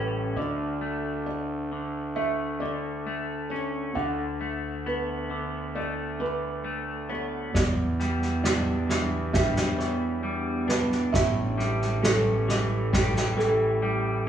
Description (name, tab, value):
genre	post-rock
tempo	67 BPM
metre	4/4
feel	straight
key	E dorian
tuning	A4 = 439 Hz
part	clean electric guitar	arpeggios	0.0-14.3 s	E2 to D4	-31 LUFS	left 3 dB	vibrato effect
part	felt-muted upright piano	arpeggios	0.0-14.3 s	A4 to F#5	-32 LUFS	right 2 dB	none
part	fuzz fingered electric bass	bass	0.0-14.3 s	A1 to E2	-29 LUFS	right 1 dB	overdrive
part	glassy FM pad	sustained chords	8.4-14.3 s	E3 to G4	-33 LUFS	right 1 dB	ensemble chorus, built-in reverb
part	soft-mallet drum kit	drums	7.5-13.5 s	kick drum, snare drum	-27 LUFS	right 1 dB	none
room	wet stone room reverb, RT60 0.9 s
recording	band playing live in one room, studio reverb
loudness	-25 LUFS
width	side -9 dB against mid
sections	0.0-14.3 A section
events	none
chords	0.4 D5; 4.0 Bm7/D; 7.6 Em7; 11.1 A7